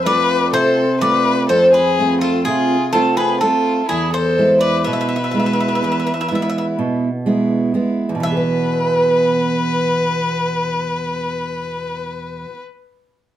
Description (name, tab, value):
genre	greek folk, Greek bouzouki band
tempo	125 BPM (eighths)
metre	9/8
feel	straight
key	E phrygian dominant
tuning	A4 = 440 Hz
part	Greek bouzouki	melody	0.0-12.6 s	G#4 to E5	-17 LUFS	equal	plate reverb
part	warm violin	second line	0.0-12.6 s	E4 to B4	-21 LUFS	left 4 dB	none
part	picked steel-string acoustic guitar	accompaniment	0.0-12.7 s	E2 to B4	-18 LUFS	right 2 dB	none
room	wet small room reverb, RT60 0.5 s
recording	none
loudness	-15 LUFS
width	side -12 dB against mid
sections	0.0-8.2 A section; 8.2-12.6 B section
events	none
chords	0.0 F; 3.9 E; 8.2 E5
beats	0.06 0.54 1.02 1.50 1.98 2.46 2.94 3.42 | 3.90 4.38 4.87 5.35 5.83 6.31 6.79 7.27 7.75 | 8.23 8.71 9.20 9.68 10.16 10.64 11.12 11.60 12.09